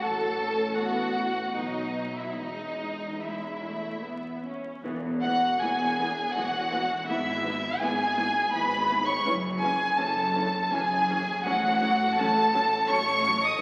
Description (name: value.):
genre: classical, slow romantic movement for string orchestra.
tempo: 71-85 BPM.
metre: 3/4.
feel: rubato.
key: E major.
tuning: A4 = 440 Hz.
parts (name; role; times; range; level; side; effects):
rich chamber violin section; melody; 0.0-13.6 s; D#5 to D#6; -29 LUFS; equal; none.
rich symphonic violin section; second line; 0.0-13.6 s; D#4 to D#5; -35 LUFS; equal; none.
rich chamber viola section; accompaniment; 0.0-13.3 s; E3 to C#4; -38 LUFS; equal; none.
clear chamber double bass section; bass; 0.0-13.5 s; E1 to B1; -41 LUFS; equal; none.
rich chamber cello section; bass; 0.0-13.5 s; E2 to B2; -37 LUFS; equal; none.
room: wet concert hall reverb, RT60 2.3 s.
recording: very old 78 rpm record, vinyl crackle.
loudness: -27 LUFS.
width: mono.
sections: 0.0-4.9 A section; 4.9-13.6 B section.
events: none.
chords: 0.0 F#m/A; 1.6 B; 2.4 E; 7.1 E/G#; 9.3 F#m7; 11.4 F#m/A.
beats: | 0.04 0.79 1.57 | 2.38 3.22 4.03 | 4.85 5.62 6.37 | 7.09 7.82 8.54 | 9.26 9.99 10.72 | 11.45 12.17 12.88 | 13.60.